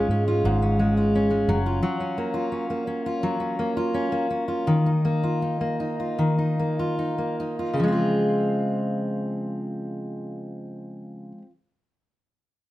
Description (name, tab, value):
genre	pop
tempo	73-86 BPM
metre	4/4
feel	straight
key	Db major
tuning	A4 = 440 Hz
part	fingerpicked steel-string acoustic guitar	accompaniment	0.0-11.5 s	Ab2 to F4	-23 LUFS	equal	none
part	vintage muted fingered electric bass	bass	0.0-1.8 s	Gb1 to Ab2	-25 LUFS	equal	none
room	light reverb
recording	none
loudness	-22 LUFS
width	side -16 dB against mid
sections	0.0-7.8 A section; 7.8-11.1 B section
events	slowing down 1.8-7.8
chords	0.0 Db/Ab; 1.5 Gbmaj7; 4.7 Ebsus2; 7.8 Dbmaj7